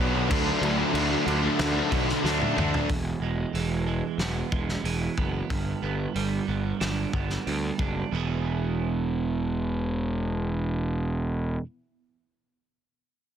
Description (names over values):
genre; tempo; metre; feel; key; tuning
quiet-loud alternative rock; 92 BPM; 4/4; straight; E mixolydian; A4 = 440 Hz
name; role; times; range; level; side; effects
soft string machine; sustained chords; 0.2-2.9 s; D4 to B5; -40 LUFS; left 1 dB; none
crunchy overdriven guitar; riff; 0.0-2.9 s; B2 to D4; -29 LUFS; left 13 dB; none
high-gain distorted guitar; riff; 0.0-2.9 s; B2 to D4; -29 LUFS; equal; distortion
overdriven electric guitar; riff; 0.0-2.9 s; B2 to D4; -30 LUFS; right 13 dB; none
fuzz picked electric bass; bass; 0.0-11.6 s; E1 to D2; -28 LUFS; equal; overdrive
loose indie drum kit; drums; 0.3-7.9 s; crash cymbal, hi-hat, kick drum, snare drum, toms; -30 LUFS; equal; none
electric guitar at the edge of break-up; arpeggios; 2.9-11.7 s; E2 to G#4; -31 LUFS; right 10 dB; lush chorus
room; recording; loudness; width
small room ambience; dense, heavily limited modern master; -24 LUFS; side -9 dB against mid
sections
0.0-2.9 A section; 2.9-8.1 B section; 8.1-10.7 C section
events
drum fill 2.2-2.9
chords
0.3 D; 2.9 E; 5.5 G; 8.1 E